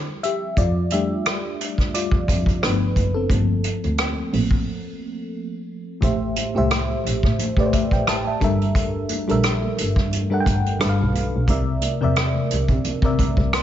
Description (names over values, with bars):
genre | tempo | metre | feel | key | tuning
R&B, neo-soul | 88 BPM | 4/4 | swing 55% on 16ths | G dorian | A4 = 441 Hz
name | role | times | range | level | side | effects
FM electric piano with auto-pan | accompaniment | 0.0-13.6 s | A2 to C6 | -23 LUFS | left 1 dB | phaser
dark double bass | bass | 0.0-13.6 s | F#1 to C3 | -24 LUFS | equal | none
unplugged drum kit | drums | 0.2-13.6 s | hi-hat, kick drum, rim click | -23 LUFS | equal | none
congas | percussion | 6.0-13.6 s | none | -34 LUFS | right 2 dB | none
room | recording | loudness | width
light reverb | nothing above 7.6 kHz | -18 LUFS | side -11 dB against mid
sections
0.0-6.0 A section; 6.0-13.6 B section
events
FM electric piano solo 0.0-6.0; break 4.7-6.0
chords
0.0 Dm11 (rootless); 0.6 F69; 2.6 G9; 3.3 Gm11 (rootless); 6.0 Am7; 8.4 Gm69; 10.8 G9; 11.5 C9